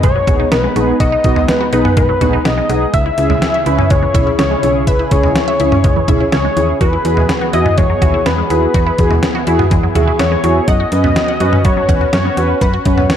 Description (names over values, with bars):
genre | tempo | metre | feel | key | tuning
synth-pop | 124 BPM | 4/4 | straight | B major | A4 = 441 Hz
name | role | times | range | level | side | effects
wide unison lead | melody | 0.0-13.2 s | B4 to E5 | -17 LUFS | left 2 dB | none
warm analog pad | sustained chords | 0.0-13.2 s | C#3 to G#4 | -22 LUFS | right 1 dB | chorus
resonant blip pluck | arpeggios | 0.0-13.1 s | E3 to F#5 | -23 LUFS | right 2 dB | phaser, tape echo
slap-like FM bass | bass | 0.0-13.1 s | A#1 to F#2 | -18 LUFS | equal | none
detuned 8-bit digital drum machine | drums | 0.0-13.2 s | hi-hat, kick drum, snare drum, toms | -16 LUFS | equal | none
mellow synth brass | accompaniment | 0.3-13.0 s | B3 to B4 | -18 LUFS | equal | chorus
room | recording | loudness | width
light reverb | none | -11 LUFS | side -9 dB against mid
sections
0.0-13.2 A section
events
none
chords
0.0 B6; 2.9 C#m; 6.8 Eadd9; 10.7 F#sus4